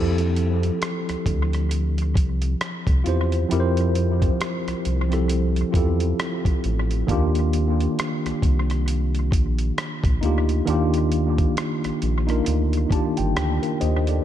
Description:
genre	R&B, neo-soul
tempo	67 BPM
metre	4/4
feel	swing 59% on 16ths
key	unclear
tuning	A4 = 440 Hz
part	tine electric piano	accompaniment	0.0-14.2 s	Eb3 to A5	-24 LUFS	equal	overdrive, fast stereo tremolo, analog delay
part	round analog bass	bass	0.0-14.2 s	G1 to F2	-22 LUFS	equal	none
part	dusty soul sampler-style drum kit	drums	0.2-14.2 s	hi-hat, kick drum, rim click	-26 LUFS	equal	analog delay
room	little or no reverb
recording	echo-heavy mix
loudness	-20 LUFS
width	side -11 dB against mid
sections	0.0-14.2 A section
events	tine electric piano fill 12.5-14.2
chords	0.0 Fmaj9; 7.1 Ebmaj9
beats	0.82 1.71 2.61 | 3.50 4.40 5.30 6.19 | 7.09 7.98 8.88 9.77 | 10.67 11.56 12.46 13.36

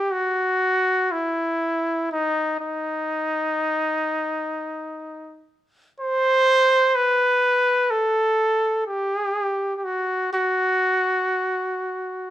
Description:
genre	caucasian folk, Caucasian lament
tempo	free time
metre	none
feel	none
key	unclear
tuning	A4 = 442 Hz
part	warm trumpet	solo	0.0-12.3 s	D#4 to C5	-20 LUFS	equal	none
room	moderate large studio reverb, RT60 1.2 s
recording	band playing live in one room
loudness	-20 LUFS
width	side -12 dB against mid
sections	0.0-12.3 A section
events	none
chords	none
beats	free time

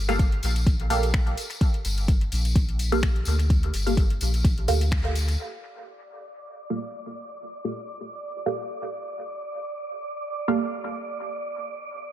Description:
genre	dub techno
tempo	127 BPM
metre	4/4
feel	swing 55% on 16ths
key	G minor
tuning	A4 = 440 Hz
part	soft dub sub bass	bass	0.0-5.4 s	G1 to D2	-25 LUFS	equal	sidechain pumping
part	filtered dub chord stab	stabs	0.1-10.6 s	Bb3 to F5	-29 LUFS	right 2 dB	phaser, sidechain pumping, dub echo
part	deep house drum kit	drums	0.1-5.4 s	finger snaps, hi-hat	-36 LUFS	left 2 dB	overdrive, dub echo
part	tambourine	percussion	0.1-5.4 s	none	-35 LUFS	left 2 dB	none
part	electronic kick drum	drums	0.2-5.0 s	none	-22 LUFS	equal	none
part	wind-like tuned noise texture	texture	6.0-12.1 s	D5	-34 LUFS	right 2 dB	built-in reverb, sidechain pumping
room	little or no reverb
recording	none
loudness	-23 LUFS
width	side -12 dB against mid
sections	0.0-5.4 A section; 5.4-12.1 B section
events	band accent 4.9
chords	0.0 Gm9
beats	0.19 0.67 1.14 | 1.61 2.08 2.56 3.03 | 3.50 3.97 4.45 4.92 | 5.39 5.86 6.33 6.81 | 7.28 7.75 8.22 8.70 | 9.17 9.64 10.12 10.59 | 11.06 11.53 12.01

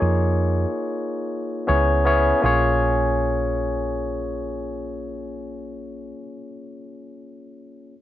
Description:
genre	lush 1970s-style soul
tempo	free time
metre	none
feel	none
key	Bb minor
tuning	A4 = 442 Hz
part	barky tine electric piano	accompaniment	0.0-8.0 s	Bb3 to Db5	-23 LUFS	left 1 dB	overdrive
part	hollow-body short-scale fingered electric bass	bass	0.0-6.1 s	Bb1 to F2	-24 LUFS	right 1 dB	none
room	light reverb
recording	nothing above 7.7 kHz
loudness	-20 LUFS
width	side -13 dB against mid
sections	0.0-2.4 A section; 2.4-5.4 B section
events	none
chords	0.0 Eb9sus4; 1.7 Dbm7; 2.4 Bbm7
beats	free time

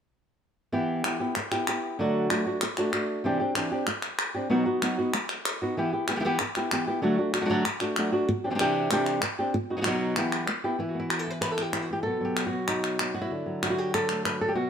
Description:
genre	flamenco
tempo	191 BPM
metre	4/4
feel	straight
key	E minor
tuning	A4 = 443 Hz
part	flamenco guitar	melody	0.7-14.7 s	B2 to B4	-26 LUFS	equal	none
part	palmas hand claps	percussion	1.0-14.4 s	none	-30 LUFS	left 1 dB	none
room	moderate stone room reverb, RT60 1.0 s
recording	none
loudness	-25 LUFS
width	side -8 dB against mid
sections	0.7-10.8 A section; 10.8-14.7 B section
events	none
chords	0.7 Em; 2.0 D; 3.2 Cadd9; 4.5 B; 5.8 Em; 7.0 D; 8.3 Cadd9; 9.5 B; 10.2 Em; 10.8 E5; 12.0 B; 13.3 Dadd9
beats	| 0.72 1.03 1.35 1.66 | 1.98 2.29 2.61 2.92 | 3.24 3.55 3.87 4.18 | 4.50 4.81 5.13 5.44 | 5.75 6.07 6.38 6.70 | 7.01 7.33 7.64 7.96 | 8.27 8.59 8.90 9.21 | 9.53 9.84 10.16 10.47 | 10.79 11.10 11.42 11.73 | 12.05 12.36 12.68 12.99 | 13.30 13.62 13.93 14.25 | 14.56

